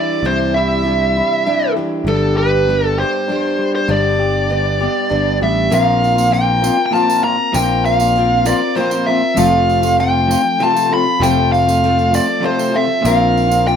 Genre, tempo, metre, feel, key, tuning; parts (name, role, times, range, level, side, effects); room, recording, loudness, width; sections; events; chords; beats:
folk rock and heartland rock; 99 BPM; 3/4; straight; A4 = 443 Hz
bluesy overdriven lead guitar; melody; 0.0-13.8 s; A4 to B5; -16 LUFS; right 1 dB; distortion
picked steel-string acoustic guitar; accompaniment; 0.0-13.8 s; G2 to Bb4; -20 LUFS; left 9 dB
electric guitar through a small old amp; riff; 0.0-13.8 s; F2 to G4; -21 LUFS; right 2 dB
picked electric bass; bass; 0.2-13.8 s; F1 to C2; -19 LUFS; equal
tambourine; percussion; 5.7-13.8 s; -30 LUFS; right 9 dB
light reverb, small room reverb; rough home demo mix; -13 LUFS; side -7 dB against mid
0.0-5.7 A section; 5.7-13.8 B section
0.0 Cadd9; 2.1 G; 5.7 Bbsus2; 9.4 F; 13.0 Bbsus2
| 0.24 0.85 1.46 | 2.07 2.68 3.29 | 3.90 4.50 5.11 | 5.72 6.33 6.94 | 7.55 8.16 8.77 | 9.38 9.98 10.60 | 11.21 11.82 12.43 | 13.04 13.65